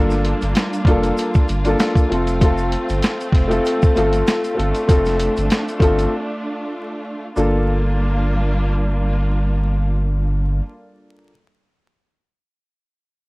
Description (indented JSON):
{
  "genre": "hip hop, boom-bap hip-hop",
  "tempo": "97 BPM",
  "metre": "4/4",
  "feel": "swing 55% on 16ths",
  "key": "G minor",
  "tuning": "A4 = 440 Hz",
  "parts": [
    { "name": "dark upright piano", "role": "accompaniment", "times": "0.0-11.3 s", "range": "A3 to A4", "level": "-21 LUFS", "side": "left 1 dB", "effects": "none" },
    { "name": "warm symphonic string section", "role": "sustained chords", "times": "0.0-10.6 s", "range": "G3 to F4", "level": "-25 LUFS", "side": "equal", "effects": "none" },
    { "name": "warm sub bass", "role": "bass", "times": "0.0-10.6 s", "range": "F1 to G1", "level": "-20 LUFS", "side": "equal", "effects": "tube saturation" },
    { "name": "boom bap sampler-style drum kit", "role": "drums", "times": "0.1-6.1 s", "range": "hi-hat, kick drum, snare drum", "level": "-17 LUFS", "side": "equal", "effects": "none" },
    { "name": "tube shaker", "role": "percussion", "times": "0.1-7.7 s", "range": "none", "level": "-43 LUFS", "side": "right 3 dB", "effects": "none" }
  ],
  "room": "light reverb",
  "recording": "worn, warbling old tape, cassette tape, vinyl crackle, warbly pitch drift",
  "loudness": "-16 LUFS",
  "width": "side -24 dB against mid",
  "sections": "0.0-7.4 A section; 7.4-9.8 B section",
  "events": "break 6.1-7.4",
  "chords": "0.0 Gm7; 2.1 F; 7.4 Gm7"
}